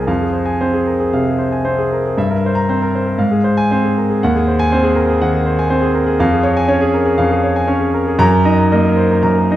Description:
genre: classical, romantic character piece for solo piano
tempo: 118 BPM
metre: 4/4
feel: rubato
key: Db major from 4.2 s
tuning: A4 = 439 Hz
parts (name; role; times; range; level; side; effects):
- clear concert grand piano; solo; 0.0-9.6 s; C2 to Bb5; -12 LUFS; equal; none
room: moderate recital hall reverb, RT60 1.4 s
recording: dark, warm production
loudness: -12 LUFS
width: side -13 dB against mid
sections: 0.0-9.6 A section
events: none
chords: 0.1 Fm; 2.2 C7/G; 3.2 Fm/Ab; 4.2 Ab7/Eb; 6.2 Db/F; 8.2 Ebm/Gb

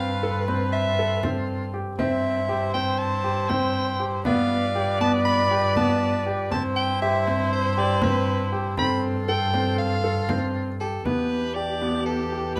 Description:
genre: contemporary instrumental, chamber music in an uneven meter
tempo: 238 BPM (eighths)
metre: 9/8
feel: straight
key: unclear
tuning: A4 = 439 Hz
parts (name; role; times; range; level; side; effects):
- clear soprano saxophone; melody; 0.0-12.6 s; A4 to B5; -29 LUFS; equal; none
- dark viola; second line; 0.0-12.6 s; G4 to D5; -31 LUFS; equal; none
- clear woodwind section; sustained chords; 0.0-12.6 s; E3 to B4; -37 LUFS; equal; none
- warm concert grand piano; arpeggios; 0.0-12.6 s; B3 to A4; -30 LUFS; equal; none
- rich double bass; bass; 0.0-12.6 s; E2 to G2; -31 LUFS; equal; none
- frame drum; percussion; 0.5-12.6 s; none; -34 LUFS; equal; none
room: moderate studio reverb, RT60 0.6 s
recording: lossy compression artefacts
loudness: -24 LUFS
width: mono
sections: 0.0-11.1 A section; 11.1-12.6 B section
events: none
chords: 0.0 Dm9/G; 2.0 Cadd9/G; 4.3 G7; 6.5 Cmaj9/G; 8.8 Dm7/G; 11.1 Em7

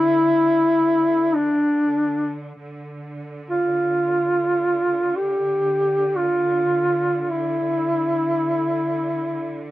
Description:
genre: caucasian folk, Caucasian lament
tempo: free time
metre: none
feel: none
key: D minor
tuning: A4 = 440 Hz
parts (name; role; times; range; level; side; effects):
- mellow duduk; melody; 0.0-9.7 s; D4 to G4; -18 LUFS; equal; none
- bright studio string section; drone; 0.0-9.7 s; D3; -32 LUFS; right 1 dB; none
room: little or no reverb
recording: recorded outdoors, with no room sound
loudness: -18 LUFS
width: side -15 dB against mid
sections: 0.0-2.6 A section; 2.6-9.7 A section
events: none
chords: none

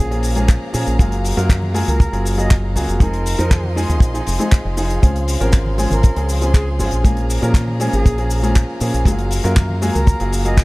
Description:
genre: nu-disco, nu disco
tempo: 119 BPM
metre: 4/4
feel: straight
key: unclear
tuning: A4 = 440 Hz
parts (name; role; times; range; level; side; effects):
- concert flute; melody; 0.0-10.6 s; Ab4 to Eb5; -28 LUFS; right 1 dB; tape echo
- clear baby grand piano; accompaniment; 0.0-10.6 s; F3 to Bb4; -22 LUFS; equal; sidechain pumping
- rich studio violin section; sustained chords; 0.0-10.6 s; Ab4 to C6; -31 LUFS; left 2 dB; sidechain pumping
- fingered electric bass with an envelope filter; bass; 0.0-10.6 s; F1 to Bb2; -19 LUFS; equal; none
- damped 70s drum kit; drums; 0.1-10.6 s; cabasa, handclaps, hi-hat; -28 LUFS; left 2 dB; small room ambience
- congas; percussion; 0.4-10.0 s; none; -27 LUFS; left 3 dB; none
- kick drum; drums; 0.5-10.6 s; none; -12 LUFS; equal; small room ambience
room: small room ambience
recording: none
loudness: -14 LUFS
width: side -22 dB against mid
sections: 0.0-10.6 A section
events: none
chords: 0.0 Bbm7; 1.0 Gbmaj9; 3.0 Fm7; 5.0 Dbmaj7; 7.0 Bbm7; 9.1 Gbmaj9

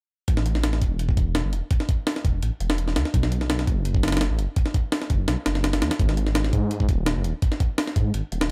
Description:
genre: drum and bass, jungle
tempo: 168 BPM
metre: 4/4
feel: straight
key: unclear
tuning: A4 = 440 Hz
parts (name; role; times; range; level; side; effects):
- dark detuned saw bass; bass; 0.3-8.5 s; D#1 to G#2; -26 LUFS; equal; none
- jungle sampler-style drum kit; drums; 0.3-8.5 s; hi-hat, kick drum, snare drum; -25 LUFS; equal; none
room: little or no reverb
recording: none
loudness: -23 LUFS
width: mono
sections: 0.3-8.5 A section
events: none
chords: none

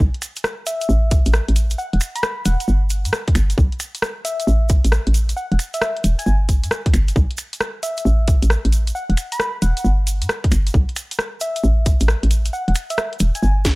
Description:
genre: UK garage, two-step garage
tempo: 134 BPM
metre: 4/4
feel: swing 66% on 16ths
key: unclear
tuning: A4 = 439 Hz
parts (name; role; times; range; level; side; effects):
- hollow knocking FM bass; bass; 0.0-13.7 s; E1 to G2; -16 LUFS; equal; none
- electronic kick drum; drums; 0.0-13.8 s; none; -16 LUFS; equal; small room ambience
- garage drum kit; drums; 0.1-13.8 s; finger snaps, hi-hat, rim click, snare drum; -24 LUFS; equal; small room ambience
- egg shaker; percussion; 0.2-13.8 s; none; -32 LUFS; right 3 dB; none
- soft struck synth lead; melody; 0.7-13.5 s; E5 to B5; -27 LUFS; left 1 dB; chorus, tape echo
room: little or no reverb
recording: dry, gritty hardware recording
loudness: -16 LUFS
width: side -23 dB against mid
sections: 0.0-13.8 A section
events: none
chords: 0.0 N.C.; 0.7 A5; 1.8 Esus2; 2.7 N.C.; 4.2 A5; 5.4 N.C.; 7.8 A5; 8.9 Esus2; 9.8 N.C.; 11.4 A5; 12.5 N.C.

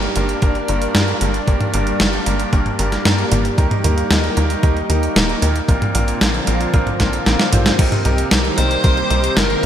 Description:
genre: synthwave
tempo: 114 BPM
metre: 4/4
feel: straight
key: C minor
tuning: A4 = 441 Hz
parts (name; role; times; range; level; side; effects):
- lush unison pad; sustained chords; 0.0-9.7 s; D3 to G4; -23 LUFS; left 1 dB; chorus, phaser, sidechain pumping
- clear baby grand piano; stabs; 0.0-9.7 s; G2 to C5; -22 LUFS; right 2 dB; vintage 12-bit sampler grit, digital delay
- tight sequencer bass; bass; 0.0-9.7 s; Eb1 to G2; -19 LUFS; equal; sidechain pumping
- clean 12-bit digital drum machine; drums; 0.0-9.7 s; crash cymbal, hi-hat, snare drum, toms; -19 LUFS; equal; gated reverb
- electronic kick drum; drums; 0.4-8.9 s; none; -16 LUFS; equal; none
- dark smooth lead guitar; melody; 8.6-9.7 s; Bb4 to C5; -19 LUFS; right 1 dB; overdrive, digital delay
- string machine, violins; second line; 8.6-9.7 s; Bb5 to C6; -27 LUFS; equal; ensemble chorus
room: moderate lush hall reverb, RT60 2.1 s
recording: bright 1980s-style digital production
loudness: -14 LUFS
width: side -10 dB against mid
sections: 0.0-7.8 A section; 7.8-9.7 B section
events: drum fill 7.0-7.8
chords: 0.0 Gm; 3.6 Eb; 5.7 Bbadd9; 7.8 Cm7

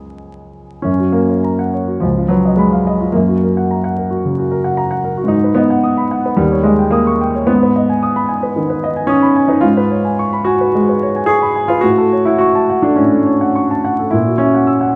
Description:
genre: classical, romantic character piece for solo piano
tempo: 93-115 BPM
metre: 4/4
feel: rubato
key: F# major, F# minor from 9.6 s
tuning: A4 = 440 Hz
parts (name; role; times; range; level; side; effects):
- warm baby grand piano; solo; 0.0-15.0 s; C#2 to E6; -14 LUFS; equal; none
room: wet recital hall reverb, RT60 1.6 s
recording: dark, warm production, vinyl crackle, nothing above 10.4 kHz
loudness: -14 LUFS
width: mono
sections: 0.9-15.0 A section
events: none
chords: 0.0 C#; 0.9 F#; 2.0 C#9; 3.1 F#; 5.3 G#m7; 6.4 D#7; 7.5 G#m; 9.6 C#7/G#; 11.8 F#m/A; 14.1 F#7/A#

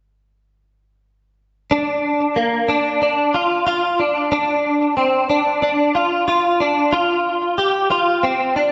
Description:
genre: dream pop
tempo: 92 BPM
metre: 4/4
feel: straight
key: Bb major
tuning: A4 = 439 Hz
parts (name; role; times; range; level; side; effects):
- direct-recorded clean electric guitar; solo; 1.7-8.7 s; Bb3 to G4; -18 LUFS; equal; ensemble chorus, delay
room: wet concert hall reverb, RT60 1.7 s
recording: nothing above 7.7 kHz, faint mains hum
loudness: -18 LUFS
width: mono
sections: 1.7-6.9 A section; 6.9-8.7 B section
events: none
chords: none

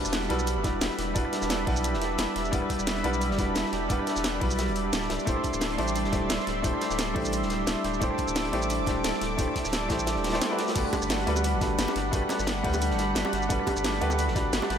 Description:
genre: liquid drum and bass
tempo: 175 BPM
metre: 4/4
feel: swing 54% on 16ths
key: E minor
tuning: A4 = 440 Hz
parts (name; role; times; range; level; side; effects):
- clear grand piano; accompaniment; 0.0-14.8 s; G3 to F#5; -30 LUFS; left 1 dB; analog delay
- lush unison pad; sustained chords; 0.0-14.8 s; G3 to D6; -31 LUFS; right 1 dB; chorus, sidechain pumping
- concert harp; arpeggios; 0.0-14.8 s; D4 to D5; -34 LUFS; right 1 dB; vintage 12-bit sampler grit, diffuse ambient delay
- impact; sound effects; 0.0-1.2 s; none; -48 LUFS; right 1 dB; none
- warm sub bass; bass; 0.1-14.8 s; D1 to D2; -32 LUFS; equal; none
- crunchy breakbeat drum kit; drums; 0.1-14.8 s; hi-hat, snare drum; -37 LUFS; equal; high-pass filter on hats, high-pass filter on snare, high-pass filter on room
- garage drum kit; drums; 0.1-14.8 s; crash cymbal, hi-hat, rim click, shaker, snare drum; -33 LUFS; equal; none
- electronic kick drum; drums; 0.6-14.4 s; none; -31 LUFS; equal; none
- bongos; percussion; 10.9-14.7 s; none; -36 LUFS; right 2 dB; none
room: moderate huge ambient reverb, RT60 4.2 s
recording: dreamy mix soaked in reverb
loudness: -24 LUFS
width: side -8 dB against mid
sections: 0.0-14.8 A section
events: impact 0.0-1.2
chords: 0.0 Em7; 5.1 D9sus4; 10.6 Gmaj7

